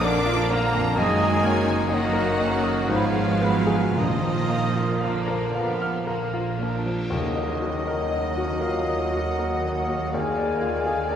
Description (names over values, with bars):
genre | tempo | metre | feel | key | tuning
classical, romantic movement for piano and orchestra | 56-64 BPM | 3/4 | rubato | Eb minor | A4 = 439 Hz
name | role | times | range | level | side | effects
clear grand piano | melody | 0.0-11.2 s | Bb1 to F6 | -26 LUFS | left 1 dB | none
warm studio violin section | melody | 0.0-11.2 s | D5 to D6 | -35 LUFS | left 2 dB | none
mellow clarinet | second line | 0.0-11.2 s | Bb4 to Eb5 | -34 LUFS | equal | none
mellow cor anglais | second line | 0.0-11.2 s | D4 to F5 | -32 LUFS | right 2 dB | none
mellow small flute group | second line | 0.0-11.2 s | Eb5 to Cb6 | -35 LUFS | left 2 dB | none
rich symphonic violin section | second line | 0.0-11.2 s | Bb3 to Eb5 | -34 LUFS | left 2 dB | none
clear bassoon | accompaniment | 0.0-11.2 s | D3 to Ab3 | -35 LUFS | right 1 dB | none
rich symphonic viola section | accompaniment | 0.0-11.2 s | Eb3 to Bb3 | -31 LUFS | right 1 dB | none
dark French horn section | sustained chords | 0.0-11.2 s | D3 to Bb4 | -32 LUFS | left 3 dB | none
dark trombone section | sustained chords | 0.0-11.2 s | D3 to Cb4 | -35 LUFS | right 3 dB | none
rich symphonic cello section | bass | 0.0-11.2 s | Eb2 to D4 | -32 LUFS | right 4 dB | none
rich symphonic double bass section | bass | 0.0-11.2 s | Gb1 to Eb2 | -31 LUFS | right 4 dB | none
cymbal swell and tam-tam | percussion | 4.0-11.1 s | none | -38 LUFS | left 1 dB | none
timpani | percussion | 4.0-8.6 s | Bb2 to Eb3 | -32 LUFS | equal | none
room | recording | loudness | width
wet scoring stage reverb, RT60 1.8 s | recorded in a church or concert hall | -21 LUFS | side -8 dB against mid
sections
0.0-7.1 A section; 7.1-11.2 B section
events
band accent 7.1-8.1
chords
0.0 Bb; 1.0 Ebm/Gb; 2.9 Fdim/Ab; 4.0 Bb; 7.1 Ebm; 10.1 Bb7/Eb